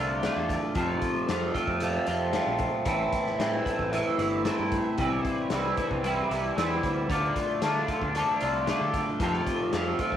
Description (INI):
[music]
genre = psychedelic rock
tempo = 114 BPM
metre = 4/4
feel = straight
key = D minor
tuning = A4 = 440 Hz
[part]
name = electric guitar through a small old amp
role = riff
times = 0.0-10.2 s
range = F2 to F4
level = -26 LUFS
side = equal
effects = flanger
[part]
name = fuzz picked electric bass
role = bass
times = 0.0-10.2 s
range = G1 to D3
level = -34 LUFS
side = right 1 dB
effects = overdrive
[part]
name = raw garage drum kit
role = drums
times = 0.2-10.2 s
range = hi-hat, kick drum, snare drum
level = -34 LUFS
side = left 3 dB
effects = none
[sound]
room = moderate echo chamber reverb, RT60 1.6 s, small room ambience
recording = 1960s-style stereo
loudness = -25 LUFS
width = side -10 dB against mid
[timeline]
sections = 0.0-10.2 A section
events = none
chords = 0.0 Dm; 0.8 F; 2.9 Am; 5.0 C; 7.1 Dm; 9.2 F